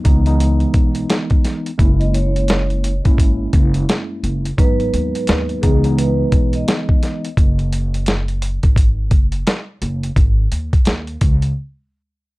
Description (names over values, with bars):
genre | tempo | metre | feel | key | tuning
hip hop, boom-bap hip-hop | 86 BPM | 4/4 | swing 61% on 16ths | unclear | A4 = 440 Hz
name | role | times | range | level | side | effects
mellow tine electric piano | accompaniment | 0.0-7.3 s | C#2 to E4 | -21 LUFS | equal | medium stereo tremolo, high-pass filter, low-pass filter
dusty soul sampler-style drum kit | drums | 0.0-11.5 s | hi-hat, kick drum, snare drum | -15 LUFS | equal | none
upright bass | bass | 0.1-11.5 s | F#1 to D#2 | -18 LUFS | equal | none
vibraphone with soft mallets | melody | 2.0-7.3 s | G#4 to D#5 | -24 LUFS | right 2 dB | high-pass filter, low-pass filter, digital delay
room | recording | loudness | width
light reverb | dark, warm production | -14 LUFS | side -21 dB against mid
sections
0.0-12.4 A section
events
break 11.6-12.4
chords
0.0 C#m9; 1.8 F#7; 4.6 G#m7; 5.6 C#m9; 7.4 F#sus2; 10.2 G#5; 11.2 N.C.